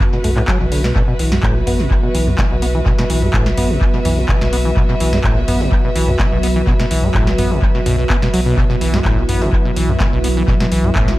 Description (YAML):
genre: acid house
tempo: 126 BPM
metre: 4/4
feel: straight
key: unclear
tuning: A4 = 436 Hz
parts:
  - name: booming analog drum machine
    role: drums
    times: 0.0-11.2 s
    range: handclaps, hi-hat, snare drum, toms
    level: -22 LUFS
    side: equal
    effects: tape echo
  - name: electronic kick drum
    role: drums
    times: 0.0-11.1 s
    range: none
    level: -17 LUFS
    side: equal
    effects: none
  - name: warm chamber string section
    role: texture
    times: 0.0-11.2 s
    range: B3 to F#5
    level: -23 LUFS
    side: right 1 dB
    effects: sidechain pumping
  - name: acid bass, saw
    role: riff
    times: 0.1-11.1 s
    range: A2 to B3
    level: -20 LUFS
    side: equal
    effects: tube saturation, sidechain pumping, tape echo
  - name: warm sub bass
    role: bass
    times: 0.2-11.2 s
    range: F#1 to B1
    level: -19 LUFS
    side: equal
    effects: tube saturation, sidechain pumping
  - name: lush unison pad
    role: sustained chords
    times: 1.0-11.2 s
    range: F#3 to B4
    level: -24 LUFS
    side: right 1 dB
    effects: chorus, sidechain pumping
room: little or no reverb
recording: echo-heavy mix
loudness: -13 LUFS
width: side -17 dB against mid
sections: 0.0-11.2 A section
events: drum fill 0.5-1.0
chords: 0.0 B5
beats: 0.00 0.48 | 0.96 1.43 1.91 2.38 | 2.86 3.34 3.81 4.29 | 4.77 5.24 5.72 6.20 | 6.67 7.15 7.62 8.10 | 8.58 9.05 9.53 10.00 | 10.48 10.96